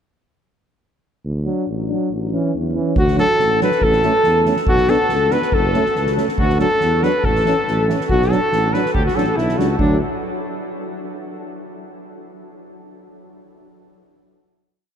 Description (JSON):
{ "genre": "balkan folk, Balkan brass band", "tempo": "140 BPM", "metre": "2/4", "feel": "swing 54% on 16ths", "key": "D major", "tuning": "A4 = 440 Hz", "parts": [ { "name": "mellow tuba", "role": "bass", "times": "1.2-10.0 s", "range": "F#1 to E2", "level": "-21 LUFS", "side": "equal", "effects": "none" }, { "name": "warm euphonium", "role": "accompaniment", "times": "1.5-10.0 s", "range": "C#4 to D4", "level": "-26 LUFS", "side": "left 4 dB", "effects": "none" }, { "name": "warm trombone", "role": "accompaniment", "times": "1.5-10.0 s", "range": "E3 to B3", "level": "-25 LUFS", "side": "right 5 dB", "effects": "none" }, { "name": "clear cornet", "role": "melody", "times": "3.0-10.0 s", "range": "D4 to B4", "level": "-20 LUFS", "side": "equal", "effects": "none" }, { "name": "warm alto saxophone", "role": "second line", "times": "3.0-10.0 s", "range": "D4 to B4", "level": "-22 LUFS", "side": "left 1 dB", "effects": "none" }, { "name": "soft-mallet drum kit", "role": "percussion", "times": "3.0-10.0 s", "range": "kick drum, snare drum", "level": "-24 LUFS", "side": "equal", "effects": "none" } ], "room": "wet huge ambient reverb, RT60 8.2 s", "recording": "in a vast, echoing space", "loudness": "-15 LUFS", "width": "side -8 dB against mid", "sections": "1.2-3.0 intro; 3.0-9.8 A section; 9.8-10.6 final chord", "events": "none", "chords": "1.2 D; 2.1 A; 3.0 D; 3.8 A; 4.7 Bm; 5.5 F#m; 6.4 D; 7.2 A; 8.1 Bm; 8.9 D" }